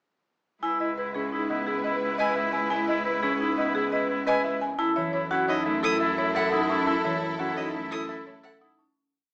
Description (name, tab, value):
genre	classical, minimalist pattern music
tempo	173 BPM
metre	6/4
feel	straight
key	F# dorian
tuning	A4 = 442 Hz
part	buzzing marimba with medium hard mallets	melody	0.6-9.0 s	G#4 to A5	-34 LUFS	equal	none
part	clear oboe	second line	0.6-8.7 s	E4	-32 LUFS	equal	none
part	clear symphonic violin section	sustained chords	0.6-8.7 s	E4 to B4	-37 LUFS	equal	none
part	vibraphone with medium mallets	arpeggios	0.6-9.0 s	C#4 to C#5	-32 LUFS	equal	none
part	rich cello	bass	0.6-8.8 s	C#2 to F#2	-38 LUFS	equal	none
part	concert harp	accompaniment	1.1-9.0 s	E3 to C#4	-36 LUFS	equal	none
part	rich violin	arpeggios	2.2-8.6 s	D#5 to D#6	-34 LUFS	equal	none
room	moderate large studio reverb, RT60 1.2 s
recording	small speaker sound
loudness	-26 LUFS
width	mono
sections	0.6-9.0 A section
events	fade-out 6.9-9.0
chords	0.6 C#m7; 4.8 F#m7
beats	| 0.63 0.98 1.33 1.68 2.02 2.37 | 2.71 3.06 3.41 3.76 4.10 4.45 | 4.80 5.14 5.49 5.84 6.18 6.53 | 6.88 7.22 7.57 7.92 8.26 8.61